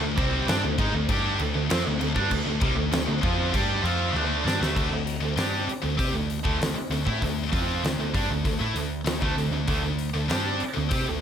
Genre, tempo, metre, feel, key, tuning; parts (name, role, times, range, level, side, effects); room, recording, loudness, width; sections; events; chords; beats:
hard rock; 98 BPM; 4/4; straight; A4 = 440 Hz
heavy high-gain guitar; riff; 0.0-11.2 s; C3 to G4; -29 LUFS; left 12 dB; distortion
tight distorted guitar; riff; 0.0-11.2 s; C3 to G4; -29 LUFS; right 10 dB; distortion
vintage muted picked electric bass; bass; 0.0-11.2 s; C2 to C3; -29 LUFS; equal
huge arena drum kit; drums; 0.2-11.1 s; crash cymbal, hi-hat, kick drum, snare drum, toms; -29 LUFS; equal
light reverb, small room reverb; -23 LUFS; side -8 dB against mid
0.0-4.8 A section; 4.8-11.2 B section
drum fill 4.1-4.8
0.0 D5
0.48 1.09 1.71 | 2.31 2.93 3.54 4.15 | 4.76 5.37 5.99 6.60 | 7.22 7.84 8.45 9.07 | 9.69 10.31 10.92